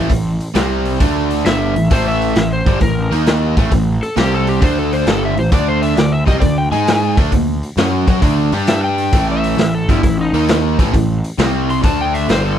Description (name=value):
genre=blues rock power trio and southern rock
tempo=133 BPM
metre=4/4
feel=swing 68% on 8ths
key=unclear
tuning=A4 = 440 Hz
part: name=crunchy overdriven guitar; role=riff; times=0.0-12.6 s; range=G2 to G#4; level=-17 LUFS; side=right 1 dB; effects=none
part: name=fuzz picked electric bass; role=bass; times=0.0-12.6 s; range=G1 to G#2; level=-19 LUFS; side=equal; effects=overdrive
part: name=raw garage drum kit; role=drums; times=0.1-12.4 s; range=hi-hat, kick drum, snare drum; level=-17 LUFS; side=equal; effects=none
part: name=overdriven slide guitar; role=melody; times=1.5-12.6 s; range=D#4 to C6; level=-20 LUFS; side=left 2 dB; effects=none
room=little or no reverb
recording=none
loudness=-13 LUFS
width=side -9 dB against mid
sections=0.0-12.6 A section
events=electric slide guitar solo 0.0-12.6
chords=0.0 A5; 0.6 C5; 1.0 D5; 1.5 A5; 3.0 D#5; 3.5 A5; 4.2 C5; 4.6 D5; 5.1 A5; 5.5 D5; 6.6 G#5; 7.1 D5; 7.3 Bbadd11/D; 7.8 Dmaj7; 8.4 G5; 9.1 A5; 10.3 D#5; 10.7 A5; 11.4 C5; 11.8 D5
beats=| 0.11 0.56 1.01 1.46 | 1.91 2.36 2.81 3.26 | 3.71 4.16 4.61 5.07 | 5.52 5.97 6.42 6.87 | 7.32 7.77 8.22 8.67 | 9.12 9.58 10.03 10.48 | 10.93 11.38 11.84 12.29